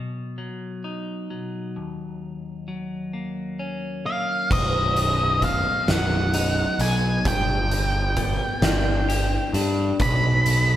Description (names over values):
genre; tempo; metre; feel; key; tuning
post-rock; 44 BPM (dotted quarters); 6/8; straight; B lydian; A4 = 440 Hz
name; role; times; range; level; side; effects
clean electric guitar; arpeggios; 0.0-10.8 s; B1 to G4; -28 LUFS; left 2 dB; phaser
octave-fuzz lead guitar; melody; 4.1-10.8 s; D#5 to B5; -24 LUFS; equal; distortion
fuzz picked electric bass; bass; 4.5-10.8 s; B0 to G2; -24 LUFS; equal; overdrive
oversized low-tuned drum kit; drums; 4.5-10.7 s; crash cymbal, hi-hat, kick drum, snare drum; -26 LUFS; equal; none
room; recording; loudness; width
moderate large studio reverb, RT60 1.4 s; band playing live in one room; -21 LUFS; side -12 dB against mid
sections
0.0-4.5 A section; 4.5-10.8 B section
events
none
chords
0.0 B; 1.8 D#m7; 4.5 B; 7.3 G; 10.0 N.C.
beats
0.38 | 1.76 3.13 | 4.51 5.88 | 7.26 8.63 | 10.00